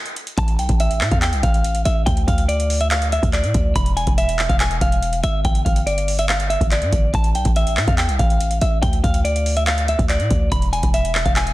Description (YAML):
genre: hip hop, trap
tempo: 142 BPM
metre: 4/4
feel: half-time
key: unclear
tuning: A4 = 440 Hz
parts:
  - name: booming analog drum machine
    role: drums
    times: 0.1-11.5 s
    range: handclaps, hi-hat, kick drum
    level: -20 LUFS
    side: equal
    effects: vintage 12-bit sampler grit
  - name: clean electric guitar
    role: melody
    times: 0.4-11.5 s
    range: D5 to B5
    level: -22 LUFS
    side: equal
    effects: spring reverb, low-pass filter, digital delay
  - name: hard-hitting 808-style bass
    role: bass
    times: 0.4-11.5 s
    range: E1 to A2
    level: -20 LUFS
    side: equal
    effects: none
room: digital ambience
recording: dense, heavily limited modern master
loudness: -16 LUFS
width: side -17 dB against mid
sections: 0.4-11.5 A section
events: break 0.0-0.4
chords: 0.4 A5; 2.1 D5; 3.8 E; 5.4 G5; 7.1 A5; 8.8 D5; 10.5 E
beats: | 0.38 0.80 1.22 1.64 | 2.07 2.49 2.91 3.33 | 3.76 4.18 4.60 5.02 | 5.45 5.87 6.29 6.71 | 7.14 7.56 7.98 8.40 | 8.83 9.25 9.67 10.09 | 10.52 10.94 11.36